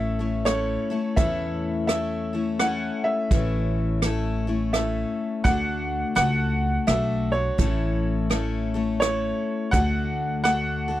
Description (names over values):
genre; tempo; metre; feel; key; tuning
honky-tonk and classic country; 84 BPM; 3/4; swing 63% on 8ths; unclear; A4 = 440 Hz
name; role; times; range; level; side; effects
clear upright piano; melody; 0.0-11.0 s; C#5 to F#5; -27 LUFS; right 1 dB; none
picked steel-string acoustic guitar; accompaniment; 0.0-11.0 s; A2 to A4; -27 LUFS; left 4 dB; none
upright bass; bass; 0.0-11.0 s; A1 to E2; -27 LUFS; right 1 dB; none
unplugged drum kit; drums; 0.5-10.7 s; hi-hat, kick drum, rim click; -24 LUFS; right 1 dB; none
room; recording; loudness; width
little or no reverb; none; -22 LUFS; side -14 dB against mid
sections
0.0-11.0 A section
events
none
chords
0.0 A; 5.5 D; 7.6 A; 9.7 D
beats
0.46 | 1.18 1.89 2.60 | 3.31 4.03 4.74 | 5.45 6.16 6.88 | 7.59 8.30 9.02 | 9.73 10.45